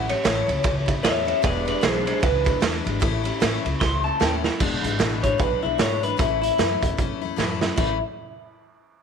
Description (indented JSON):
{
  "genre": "rockabilly",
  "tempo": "151 BPM",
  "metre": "4/4",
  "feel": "swing 60% on 8ths",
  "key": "A major",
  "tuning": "A4 = 440 Hz",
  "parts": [
    { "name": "electric guitar through a small old amp", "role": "melody", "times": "0.0-8.0 s", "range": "E4 to C6", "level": "-25 LUFS", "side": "left 2 dB", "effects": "lush chorus, tape echo" },
    { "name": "picked steel-string acoustic guitar", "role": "accompaniment", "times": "0.0-8.0 s", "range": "E2 to E4", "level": "-28 LUFS", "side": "left 12 dB", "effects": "none" },
    { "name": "upright bass", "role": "bass", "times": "0.0-8.0 s", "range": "E1 to F#2", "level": "-28 LUFS", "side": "equal", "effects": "none" },
    { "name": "raw garage drum kit", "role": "drums", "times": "0.1-7.9 s", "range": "crash cymbal, hi-hat, kick drum, ride cymbal, snare drum", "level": "-24 LUFS", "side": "right 4 dB", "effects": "none" }
  ],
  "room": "light reverb, studio reverb",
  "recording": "1960s-style stereo",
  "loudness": "-20 LUFS",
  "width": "side -6 dB against mid",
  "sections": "0.0-4.6 A section; 4.6-7.8 B section; 7.8-9.0 C section",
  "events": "drum fill 3.8-4.6, 7.4-7.8",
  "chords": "0.0 A; 1.4 E7; 3.0 A; 4.6 E7; 6.2 A"
}